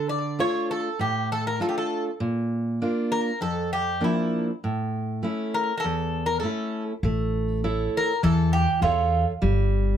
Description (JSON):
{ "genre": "greek folk, Greek bouzouki band", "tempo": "100 BPM", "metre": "4/4", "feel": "straight", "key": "A phrygian dominant", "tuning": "A4 = 440 Hz", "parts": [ { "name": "Greek bouzouki", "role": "melody", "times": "0.0-9.2 s", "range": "E4 to D5", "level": "-26 LUFS", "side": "right 1 dB", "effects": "slapback echo" }, { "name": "fingerpicked steel-string acoustic guitar", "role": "accompaniment", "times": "0.0-10.0 s", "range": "E2 to E5", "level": "-26 LUFS", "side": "equal", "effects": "none" }, { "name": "upright bass", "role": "bass", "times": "7.0-10.0 s", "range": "G1 to E2", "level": "-23 LUFS", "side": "left 1 dB", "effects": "none" } ], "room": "light reverb", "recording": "close, detailed microphones", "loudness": "-23 LUFS", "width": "side -9 dB against mid", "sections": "0.0-7.0 A section; 7.0-10.0 A section", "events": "none", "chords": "0.0 Dm; 2.2 Bb; 4.6 A; 9.4 N.C." }